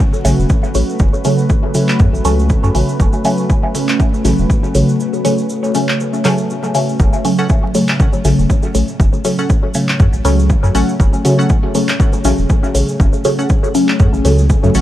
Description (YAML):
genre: dub techno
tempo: 120 BPM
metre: 4/4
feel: swing 56% on 16ths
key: F# minor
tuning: A4 = 442 Hz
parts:
  - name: deep dark ambient pad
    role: sustained chords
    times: 0.0-14.8 s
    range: A3 to C#5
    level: -24 LUFS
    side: equal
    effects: chorus, built-in reverb, sidechain pumping
  - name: filtered dub chord stab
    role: stabs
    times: 0.0-14.8 s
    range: C#3 to C#4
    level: -16 LUFS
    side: equal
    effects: phaser, sidechain pumping, dub echo
  - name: electronic kick drum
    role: drums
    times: 0.0-14.6 s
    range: none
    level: -13 LUFS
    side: equal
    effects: none
  - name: cabasa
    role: percussion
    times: 0.1-14.8 s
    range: none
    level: -30 LUFS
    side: right 2 dB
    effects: none
  - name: soft dub sub bass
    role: bass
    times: 0.2-14.8 s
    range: E1 to F#2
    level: -15 LUFS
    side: equal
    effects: tube saturation, sidechain pumping
  - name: punchy analog drum machine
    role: drums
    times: 0.2-14.8 s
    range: handclaps, hi-hat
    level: -24 LUFS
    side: equal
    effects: dub echo
  - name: wavetable chord stab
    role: riff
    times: 7.4-14.8 s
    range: C#4 to F#5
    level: -26 LUFS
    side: equal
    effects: sidechain pumping, dub echo
room: little or no reverb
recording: dark, warm production, vinyl crackle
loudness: -11 LUFS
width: side -13 dB against mid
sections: 0.0-14.8 A section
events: break 5.0-7.0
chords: 0.0 F#m